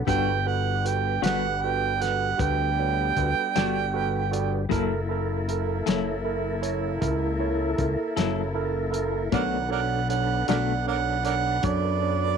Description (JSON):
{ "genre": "slow blues", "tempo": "52 BPM (dotted quarters)", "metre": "12/8", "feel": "straight", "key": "B minor", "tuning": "A4 = 438 Hz", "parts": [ { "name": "barky tine electric piano", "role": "accompaniment", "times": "0.0-12.3 s", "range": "D4 to D5", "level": "-31 LUFS", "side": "right 12 dB", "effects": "overdrive" }, { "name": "tonewheel organ", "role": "sustained chords", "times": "0.0-12.4 s", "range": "D#3 to B4", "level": "-33 LUFS", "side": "left 2 dB", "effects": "chorus vibrato, slow rotary speaker" }, { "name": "fat analog bass", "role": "bass", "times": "0.0-12.4 s", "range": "F#1 to F#2", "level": "-28 LUFS", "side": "left 3 dB", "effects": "none" }, { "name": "warm harmonica", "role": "second line", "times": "0.1-12.4 s", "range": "A#4 to G5", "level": "-26 LUFS", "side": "right 10 dB", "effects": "overdrive" }, { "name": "clean electric guitar", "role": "accompaniment", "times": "0.1-10.7 s", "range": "B2 to A4", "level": "-28 LUFS", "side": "left 17 dB", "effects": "tremolo" }, { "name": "warm horn section", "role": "sustained chords", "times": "0.1-12.4 s", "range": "G3 to B4", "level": "-36 LUFS", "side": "left 1 dB", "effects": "none" }, { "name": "warm soul drum kit", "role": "drums", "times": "0.1-11.8 s", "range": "hi-hat, kick drum, snare drum", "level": "-29 LUFS", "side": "left 3 dB", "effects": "none" } ], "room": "light reverb, small room ambience", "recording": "1960s-style stereo with parts hard left and right", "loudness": "-23 LUFS", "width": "side -6 dB against mid", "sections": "0.0-12.4 A section", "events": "harmonica solo 0.0-12.4", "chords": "0.1 Gmaj7; 4.7 F#7#9; 9.3 Bm7" }